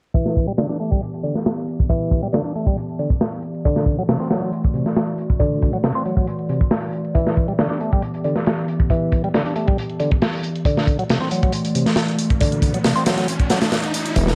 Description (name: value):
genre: breakbeat, breaks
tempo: 137 BPM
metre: 4/4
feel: straight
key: E minor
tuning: A4 = 439 Hz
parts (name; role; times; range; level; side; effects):
- warbly tape-like pad; sustained chords; 0.6-14.3 s; E3 to D5; -28 LUFS; equal; chorus, built-in reverb, sidechain pumping
- percussive tonewheel organ; riff; 0.1-14.3 s; C3 to D4; -26 LUFS; equal; slow rotary speaker, vintage 12-bit sampler grit, low-pass filter, dub echo
- crunchy breakbeat drum kit; drums; 0.1-14.3 s; hi-hat, kick drum, snare drum; -22 LUFS; equal; low-pass filter on kick, low-pass filter on hats, low-pass filter on snare, low-pass filter on room
- electronic hi-hat; drums; 0.1-14.3 s; none; -38 LUFS; equal; overdrive
- riser; sound effects; 11.7-14.2 s; none; -31 LUFS; equal; none
- detuned saw bass; bass; 14.2-14.3 s; E1; -21 LUFS; equal; none
room: small room ambience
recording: vinyl crackle, low-pass filter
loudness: -20 LUFS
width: mono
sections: 0.1-14.2 A section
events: filter sweep on drum 0.1-14.2; filter sweep on tonewheel organ 0.1-14.2; filter sweep 0.1-14.2; riser 11.7-14.2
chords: 0.1 Em7; 3.6 Dadd9; 7.2 Em7; 10.7 Dadd9